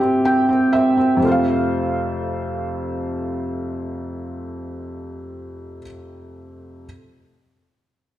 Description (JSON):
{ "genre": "pop", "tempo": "39 BPM (dotted quarters)", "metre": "6/8", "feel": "straight", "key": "unclear", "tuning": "A4 = 439 Hz", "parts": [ { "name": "felt-muted upright piano", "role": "accompaniment", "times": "0.0-6.9 s", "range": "F2 to G5", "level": "-20 LUFS", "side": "equal", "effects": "none" } ], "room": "wet recital hall reverb, RT60 1.5 s", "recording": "none", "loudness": "-18 LUFS", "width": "side -13 dB against mid", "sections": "0.0-1.2 A section; 1.2-4.3 B section", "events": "felt piano fill 0.0-1.2; slowing down 0.0-1.2", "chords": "0.0 C; 1.2 F" }